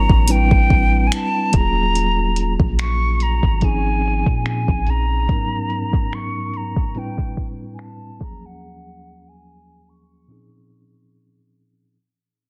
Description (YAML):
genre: contemporary R&B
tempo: 72 BPM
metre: 4/4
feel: swing 54% on 16ths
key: unclear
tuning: A4 = 440 Hz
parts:
  - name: hollow concert flute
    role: melody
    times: 0.0-11.6 s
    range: Gb5 to Db6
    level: -26 LUFS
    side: equal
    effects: delay
  - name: mellow tine electric piano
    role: accompaniment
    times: 0.0-12.0 s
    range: Eb2 to Db5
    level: -28 LUFS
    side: equal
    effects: none
  - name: soft 808-style bass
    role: bass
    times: 0.0-5.3 s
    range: Eb1 to Bb2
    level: -21 LUFS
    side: equal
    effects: none
  - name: smooth R&B drum kit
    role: drums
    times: 0.1-8.4 s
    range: finger snaps, hi-hat, kick drum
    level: -21 LUFS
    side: equal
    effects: soft clipping on snare
room: digital ambience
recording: dense, heavily limited modern master, low-pass filter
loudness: -19 LUFS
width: mono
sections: 0.0-12.0 A section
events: fade-out 0.0-12.0; filter sweep 0.0-12.0; break 8.6-12.0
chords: 0.3 Am11; 1.5 Ebm11; 3.6 Bbm11; 5.3 Abm11; 7.0 Am11; 8.2 Ebm11; 10.3 Bbm11